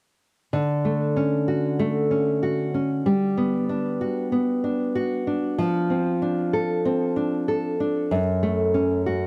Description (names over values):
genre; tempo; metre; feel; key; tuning
folktronica; 95 BPM; 4/4; swing 56% on 16ths; D major; A4 = 440 Hz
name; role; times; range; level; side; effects
nylon-string guitar; solo; 0.5-9.3 s; F#2 to A4; -24 LUFS; equal; tape echo
room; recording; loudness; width
light reverb; dry, close 1970s-style studio recording; -24 LUFS; mono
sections
0.5-9.3 A section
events
none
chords
0.5 Dmaj7; 3.1 Gmaj7; 5.6 F6; 8.1 F#m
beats
| 0.54 1.17 1.80 2.43 | 3.06 3.69 4.32 4.96 | 5.59 6.22 6.85 7.48 | 8.11 8.74